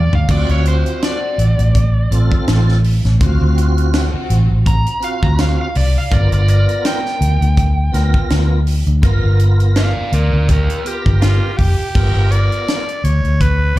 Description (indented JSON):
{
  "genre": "straight-eighth soul blues",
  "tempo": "82 BPM",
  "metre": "4/4",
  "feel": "swing 56% on 16ths",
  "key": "unclear",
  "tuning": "A4 = 440 Hz",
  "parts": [
    { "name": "overdriven slide guitar", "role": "second line", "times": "0.0-11.9 s", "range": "G4 to Bb5", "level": "-23 LUFS", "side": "right 1 dB", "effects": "slapback echo" },
    { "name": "vintage muted fingered electric bass", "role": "bass", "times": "0.0-13.8 s", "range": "F1 to E2", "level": "-13 LUFS", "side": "equal", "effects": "none" },
    { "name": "tight funk drum kit", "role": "drums", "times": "0.1-13.8 s", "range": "crash cymbal, hi-hat, kick drum, snare drum, toms", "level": "-19 LUFS", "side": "equal", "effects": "none" },
    { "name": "tonewheel organ", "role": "accompaniment", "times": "0.3-13.8 s", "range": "B3 to A#4", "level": "-25 LUFS", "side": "right 2 dB", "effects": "overdrive, chorus vibrato, slow rotary speaker, slapback echo" },
    { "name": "warm symphonic string section", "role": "sustained chords", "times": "0.3-10.5 s", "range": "F#3 to E#5", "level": "-31 LUFS", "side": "left 3 dB", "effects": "none" },
    { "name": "raspy tenor saxophone", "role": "melody", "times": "11.2-13.8 s", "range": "F4 to D5", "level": "-21 LUFS", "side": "equal", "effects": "slapback echo" }
  ],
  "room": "little or no reverb",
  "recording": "live gig heard through the venue's PA, club reverb",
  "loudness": "-12 LUFS",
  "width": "side -16 dB against mid",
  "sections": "0.0-11.9 A section; 11.9-13.8 B section",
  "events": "drum fill 0.0; electric slide guitar solo 0.0-11.9",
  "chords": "0.3 D7#9; 6.1 G7#9"
}